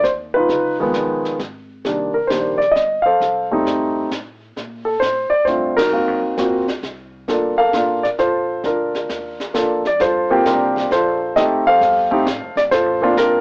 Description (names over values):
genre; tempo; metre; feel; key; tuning
jazz piano trio; 132 BPM; 3/4; swing 68% on 8ths; G minor; A4 = 440 Hz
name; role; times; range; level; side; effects
warm grand piano; melody; 0.0-13.4 s; D#3 to F5; -15 LUFS; equal; none
upright bass; bass; 0.0-13.4 s; Eb1 to Bb2; -37 LUFS; equal; none
jazz brush drum kit; drums; 0.0-13.4 s; brushed snare drum, hi-hat, kick drum, ride cymbal, snare drum; -28 LUFS; equal; cassette tape
room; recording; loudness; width
moderate small room reverb, RT60 0.5 s; home recording on cassette, AM radio sound; -15 LUFS; side -30 dB against mid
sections
0.0-10.0 A section; 10.0-13.4 B section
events
band accent 5.7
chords
0.5 C#9; 1.8 Cm7; 3.2 Cm6; 4.6 Bbmaj7; 5.9 Ab13 (rootless); 7.3 Gm9; 10.0 Gm11; 11.4 F9; 12.7 Bbmaj7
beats
0.04 | 0.49 0.94 1.39 | 1.85 2.30 2.75 | 3.21 3.66 4.11 | 4.56 5.02 5.47 | 5.92 6.38 6.83 | 7.28 7.73 8.19 | 8.64 9.09 9.54 | 10.00 10.45 10.90 | 11.36 11.81 12.26 | 12.71 13.17